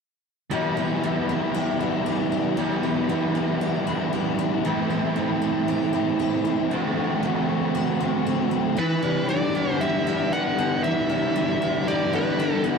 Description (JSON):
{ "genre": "rock", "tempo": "116 BPM", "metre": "4/4", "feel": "straight", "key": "E minor", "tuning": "A4 = 440 Hz", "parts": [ { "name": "picked twelve-string acoustic guitar", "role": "arpeggios", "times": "0.5-12.8 s", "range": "E3 to G4", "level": "-30 LUFS", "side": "equal", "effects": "lush chorus, tape echo" }, { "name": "biting overdriven guitar", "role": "riff", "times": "0.5-12.8 s", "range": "E2 to F#4", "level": "-26 LUFS", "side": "left 10 dB", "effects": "ensemble chorus" }, { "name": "biting overdriven guitar", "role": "riff", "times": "0.5-12.8 s", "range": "A2 to B4", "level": "-25 LUFS", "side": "right 10 dB", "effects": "reverse reverb" }, { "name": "bluesy overdriven lead guitar", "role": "melody", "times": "8.8-12.6 s", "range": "B4 to F#5", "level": "-26 LUFS", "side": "left 1 dB", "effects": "distortion, tape echo" } ], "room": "light reverb, digital ambience", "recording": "dark, warm production", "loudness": "-21 LUFS", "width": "side -5 dB against mid", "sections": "0.5-8.8 A section; 8.8-12.8 B section", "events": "none", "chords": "0.5 Em7; 4.7 Am7; 6.7 D9; 8.8 Em7", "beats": "| 0.52 1.04 1.55 2.07 | 2.59 3.10 3.62 4.13 | 4.65 5.17 5.68 6.20 | 6.71 7.23 7.75 8.26 | 8.78 9.29 9.81 10.32 | 10.84 11.35 11.87 12.38" }